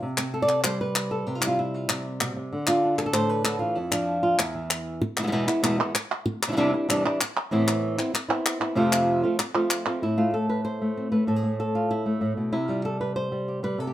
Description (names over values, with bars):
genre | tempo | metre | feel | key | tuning
flamenco | 192 BPM | 4/4 | straight | unclear | A4 = 437 Hz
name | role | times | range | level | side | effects
flamenco guitar | melody | 0.0-13.9 s | E2 to D5 | -24 LUFS | equal | none
palmas hand claps | percussion | 0.2-10.0 s | none | -26 LUFS | left 1 dB | none
room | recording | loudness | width
moderate studio reverb, RT60 0.8 s | minimal, uncompressed stereo recording | -23 LUFS | side -13 dB against mid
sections
0.0-5.0 A section; 5.0-10.0 B section; 10.0-13.9 C section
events
none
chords
0.0 C; 2.5 Dm; 3.8 N.C.; 5.0 E; 6.3 Cadd9/E; 7.5 Amadd9; 8.8 F; 10.0 Am; 12.5 C